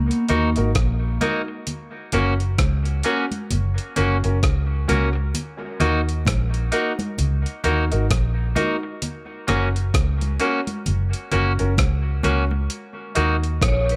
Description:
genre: dub reggae.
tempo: 65 BPM.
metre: 4/4.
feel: swing 60% on 16ths.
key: Eb minor.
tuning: A4 = 440 Hz.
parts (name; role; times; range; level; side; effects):
vibraphone with medium hard mallets; melody; 0.0-0.5, 13.6-14.0 s; Bb3 to Db5; -28 LUFS; equal; dub echo.
vintage muted fingered electric bass; bass; 0.0-14.0 s; Gb1 to Eb2; -24 LUFS; equal; none.
dusty soul sampler-style drum kit; drums; 0.1-14.0 s; hi-hat, kick drum, rim click; -26 LUFS; equal; overdrive.
clean electric guitar; accompaniment; 0.3-13.4 s; Bb3 to Gb4; -29 LUFS; equal; dub echo.
warm grand piano; stabs; 0.3-13.3 s; Db4 to Bb4; -30 LUFS; equal; dub echo.
congas; percussion; 0.3-12.7 s; none; -34 LUFS; equal; dub echo.
room: light reverb, studio reverb.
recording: none.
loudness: -22 LUFS.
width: mono.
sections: 0.0-12.7 A section; 12.7-14.0 A section.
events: none.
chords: 0.0 Ebm; 1.7 Gb; 5.3 Ebm; 9.0 Gb; 12.7 Ebm.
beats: 0.75 | 1.67 2.59 3.51 4.43 | 5.35 6.26 7.18 8.10 | 9.02 9.94 10.86 11.78 | 12.70 13.62.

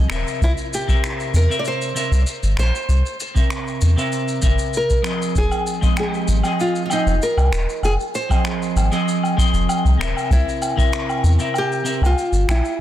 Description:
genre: sunset chillout.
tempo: 97 BPM.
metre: 4/4.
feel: straight.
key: unclear.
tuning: A4 = 445 Hz.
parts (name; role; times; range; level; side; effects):
nylon-string guitar; melody; 0.0-12.8 s; Eb4 to D5; -24 LUFS; equal; ping-pong delay.
clean electric guitar; accompaniment; 0.0-12.1 s; C3 to E5; -23 LUFS; moving between left 4 dB and right 4 dB; auto-pan, digital delay.
round analog bass; bass; 0.0-12.6 s; Eb1 to E2; -17 LUFS; equal; tube saturation.
finger snaps, shaker and woodblock; drums; 0.1-12.8 s; none; -27 LUFS; left 1 dB; soft clipping on snare.
electronic kick drum; drums; 0.4-10.9 s; none; -19 LUFS; equal; none.
room: studio reverb.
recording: dense, heavily limited modern master.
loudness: -17 LUFS.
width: side -12 dB against mid.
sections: 0.0-12.8 A section.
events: none.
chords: 0.4 C7; 5.4 Fm7; 10.3 C7.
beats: | 0.41 1.03 1.65 2.27 | 2.89 3.51 4.12 4.74 | 5.36 5.98 6.60 7.22 | 7.84 8.45 9.07 9.69 | 10.31 10.93 11.55 12.17 | 12.78.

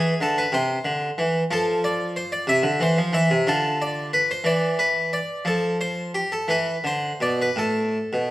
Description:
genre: classical, baroque-style suite movement for harpsichord.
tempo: 55-62 BPM (dotted quarters).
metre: 6/8.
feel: rubato.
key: unclear.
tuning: A4 = 440 Hz.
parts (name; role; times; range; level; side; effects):
harpsichord; solo; 0.0-8.3 s; A2 to E5; -20 LUFS; equal; none.
room: wet recital hall reverb, RT60 1.5 s.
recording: none.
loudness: -20 LUFS.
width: side -16 dB against mid.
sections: 0.0-8.3 A section.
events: none.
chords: 0.0 E; 0.5 Cadd9; 1.5 N.C.; 2.5 C; 3.5 Dm7; 4.5 N.C.; 6.5 E5; 7.6 N.C..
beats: 0.54 | 1.51 2.48 | 3.47 4.46 | 5.46 6.50 | 7.58.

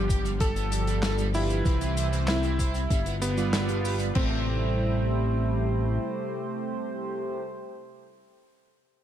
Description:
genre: synthwave.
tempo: 96 BPM.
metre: 4/4.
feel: straight.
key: A minor.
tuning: A4 = 440 Hz.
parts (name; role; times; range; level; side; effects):
bright electric grand piano; melody; 0.0-7.4 s; B3 to A4; -33 LUFS; equal; ping-pong delay.
warm analog pad; sustained chords; 0.0-7.4 s; C3 to F4; -33 LUFS; equal; chorus, sidechain pumping.
chorused synth bass; bass; 0.0-6.0 s; G1 to C2; -28 LUFS; equal; tube saturation, sidechain pumping.
overdriven semi-hollow guitar; riff; 0.1-4.4 s; G3 to C5; -36 LUFS; right 2 dB; lush chorus, ping-pong delay.
big rock drum kit; drums; 0.1-4.3 s; cabasa, crash cymbal, handclaps, hi-hat, snare drum; -34 LUFS; left 1 dB; none.
electronic kick drum; drums; 0.1-4.3 s; none; -26 LUFS; equal; overdrive.
chorused polysynth; stabs; 1.3-7.4 s; E3 to D5; -34 LUFS; right 4 dB; ping-pong delay.
room: light reverb, small room ambience.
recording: dark, warm production.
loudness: -24 LUFS.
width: side -10 dB against mid.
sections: 0.0-4.2 A section; 4.2-6.7 B section.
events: none.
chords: 0.0 G7; 1.7 Cmaj7; 2.9 G7; 4.2 Am7.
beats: 0.41 1.03 | 1.66 2.28 2.91 3.53 | 4.16 4.78 5.41 6.03.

